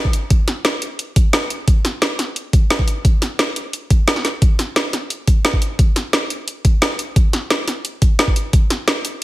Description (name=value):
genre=drum and bass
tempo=175 BPM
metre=4/4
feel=straight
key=none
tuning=none
part: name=electronic kick drum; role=drums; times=0.0-8.6 s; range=none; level=-14 LUFS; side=equal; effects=overdrive, studio reverb
part: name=drum and bass drum kit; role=drums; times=0.1-9.1 s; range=hi-hat, snare drum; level=-18 LUFS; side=equal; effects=overdrive, studio reverb
room=light reverb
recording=dense, heavily limited modern master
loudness=-15 LUFS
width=side -17 dB against mid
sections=0.0-9.2 A section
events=none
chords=none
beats=| 0.30 0.65 0.99 1.33 | 1.68 2.02 2.36 2.70 | 3.05 3.39 3.73 4.08 | 4.42 4.76 5.10 5.45 | 5.79 6.13 6.48 6.82 | 7.16 7.50 7.85 8.19 | 8.53 8.88